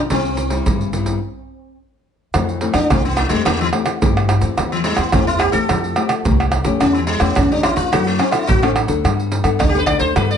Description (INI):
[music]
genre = samba and choro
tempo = 108 BPM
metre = 4/4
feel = straight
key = C major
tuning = A4 = 445 Hz
[part]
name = nylon-string guitar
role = accompaniment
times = 0.0-10.4 s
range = F2 to A4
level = -22 LUFS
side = left 7 dB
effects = none
[part]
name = sitar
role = melody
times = 0.1-10.4 s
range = E3 to D5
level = -20 LUFS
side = left 1 dB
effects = none
[part]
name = upright bass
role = bass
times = 0.1-10.4 s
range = A1 to G2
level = -21 LUFS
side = equal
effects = none
[part]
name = egg shaker, surdo, pandeiro and tamborim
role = percussion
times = 0.1-10.4 s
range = none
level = -19 LUFS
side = right 3 dB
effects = none
[sound]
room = light reverb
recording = nothing above 10.8 kHz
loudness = -15 LUFS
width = side -8 dB against mid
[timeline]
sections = 0.0-2.3 A section; 2.3-10.4 B section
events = stop 1.2-2.3; sitar solo 2.3-10.4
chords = 0.1 Cmaj7; 2.3 Fmaj7; 3.5 C6/E; 5.7 Fadd9; 6.8 A7/E; 7.9 D7/F#; 9.0 Gadd9